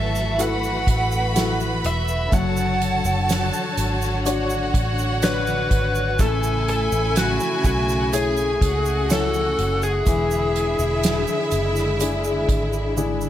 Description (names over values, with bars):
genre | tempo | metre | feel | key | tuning
pop ballad | 62 BPM | 4/4 | straight | A major | A4 = 440 Hz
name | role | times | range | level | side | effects
lead guitar through a small cranked amp | melody | 0.0-12.9 s | F#4 to F#5 | -24 LUFS | left 1 dB | overdrive
warm studio violin section | second line | 0.0-13.3 s | E4 to B5 | -28 LUFS | right 1 dB | tape echo
warm grand piano | accompaniment | 0.0-13.3 s | E3 to C#5 | -28 LUFS | left 5 dB | none
warm studio string section | sustained chords | 0.0-13.3 s | C#3 to G#5 | -28 LUFS | equal | none
vintage muted fingered electric bass | bass | 0.0-13.3 s | E1 to C#2 | -25 LUFS | equal | none
soft-mallet drum kit | drums | 0.2-13.2 s | hi-hat, kick drum, snare drum, toms | -24 LUFS | right 1 dB | none
egg shaker | percussion | 0.2-13.3 s | none | -34 LUFS | right 8 dB | none
room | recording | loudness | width
studio reverb | none | -19 LUFS | side -12 dB against mid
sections
0.0-13.3 A section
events
drum fill 13.0-13.3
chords
0.0 F#m7; 2.3 Dmaj7/F#; 6.2 Amaj7; 10.1 E7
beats
0.39 1.36 | 2.33 3.29 4.26 5.23 | 6.20 7.16 8.13 9.10 | 10.07 11.03 12.00 12.97